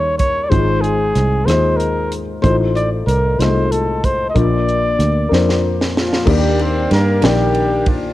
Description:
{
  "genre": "slow gospel",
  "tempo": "63 BPM (dotted quarters)",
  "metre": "6/8",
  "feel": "straight",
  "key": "Eb major",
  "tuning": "A4 = 445 Hz",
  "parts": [
    { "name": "mellow trumpet", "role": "melody", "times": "0.0-5.6 s", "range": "Ab4 to Eb5", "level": "-19 LUFS", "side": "equal", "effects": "cassette tape" },
    { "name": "dark upright piano", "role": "accompaniment", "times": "0.0-8.1 s", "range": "Ab2 to Eb5", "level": "-19 LUFS", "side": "left 4 dB", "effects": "cassette tape" },
    { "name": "fingered electric bass", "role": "bass", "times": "0.0-8.1 s", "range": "Ab1 to G2", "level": "-18 LUFS", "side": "right 1 dB", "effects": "none" },
    { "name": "tight funk drum kit", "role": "drums", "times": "0.2-8.0 s", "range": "crash cymbal, hi-hat, kick drum, ride cymbal, rim click, snare drum", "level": "-20 LUFS", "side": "right 1 dB", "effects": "cassette tape" },
    { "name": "mellow horn section", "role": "melody", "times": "6.0-8.1 s", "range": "F3 to C5", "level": "-19 LUFS", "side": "equal", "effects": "cassette tape" }
  ],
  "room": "light reverb, small room ambience",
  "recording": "home recording on cassette",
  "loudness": "-13 LUFS",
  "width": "side -15 dB against mid",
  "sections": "0.0-6.3 A section; 6.3-8.1 B section",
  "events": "drum fill 5.3-6.3",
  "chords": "0.0 Eb7; 0.5 Ab6; 2.4 F7/A; 4.4 Bb; 6.3 Ebmaj7"
}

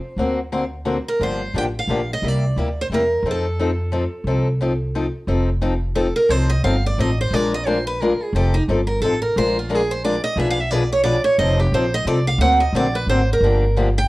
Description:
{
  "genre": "acoustic string swing (jazz manouche)",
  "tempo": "177 BPM",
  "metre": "3/4",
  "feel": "swing 59% on 8ths",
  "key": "F mixolydian",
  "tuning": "A4 = 442 Hz",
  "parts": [
    { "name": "picked steel-string acoustic guitar", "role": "melody", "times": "0.0-14.1 s", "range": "Eb4 to G5", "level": "-22 LUFS", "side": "right 2 dB", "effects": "none" },
    { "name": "picked steel-string acoustic guitar", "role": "accompaniment", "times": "0.2-13.9 s", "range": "B2 to C5", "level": "-22 LUFS", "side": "left 2 dB", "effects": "none" },
    { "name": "upright bass", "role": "bass", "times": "0.2-14.1 s", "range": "F1 to F2", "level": "-21 LUFS", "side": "equal", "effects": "none" }
  ],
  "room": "moderate studio reverb, RT60 0.6 s",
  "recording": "worn, warbling old tape, cassette tape, warbly pitch drift",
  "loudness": "-17 LUFS",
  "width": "side -19 dB against mid",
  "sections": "0.0-5.3 A section; 5.3-14.1 B section",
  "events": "steel-string acoustic guitar solo 5.3-14.1",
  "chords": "0.2 Daug7; 1.2 Gm7; 2.2 C7; 3.2 F7; 7.3 Bb7; 8.3 F7; 9.4 Bb7; 10.4 Bdim7; 11.4 F7; 12.4 Daug7; 13.4 Gm7"
}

